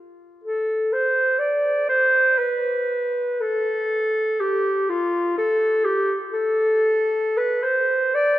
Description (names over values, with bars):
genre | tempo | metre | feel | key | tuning
classical, free, expressive piece for unaccompanied clarinet | 57-64 BPM | 4/4 | rubato | unclear | A4 = 437 Hz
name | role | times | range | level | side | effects
warm clarinet | solo | 0.4-8.4 s | F4 to D5 | -19 LUFS | equal | none
room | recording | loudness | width
wet church reverb, RT60 3.7 s | none | -19 LUFS | side -14 dB against mid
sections
0.0-8.4 A section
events
none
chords
none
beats
| 0.45 1.41 2.38 3.41 | 4.42 5.39 6.35 7.38